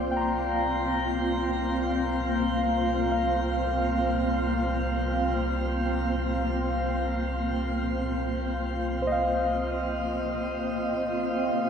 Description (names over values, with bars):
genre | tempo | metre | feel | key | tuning
ambient | free time | none | none | unclear | A4 = 438 Hz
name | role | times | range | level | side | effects
granular cloud pad | sustained chords | 0.0-11.7 s | Bb3 to F5 | -27 LUFS | equal | built-in reverb
muted felt-like synth keys | arpeggios | 0.0-11.7 s | C5 to C6 | -31 LUFS | equal | chorus, diffuse ambient delay
round analog bass | bass | 0.0-11.7 s | C2 | -32 LUFS | equal | none
room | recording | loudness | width
wet shimmer reverb, RT60 7.7 s | nothing above 10.5 kHz | -25 LUFS | side -7 dB against mid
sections
0.0-11.6 A section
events
none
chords
0.0 Bbsus2/C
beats
free time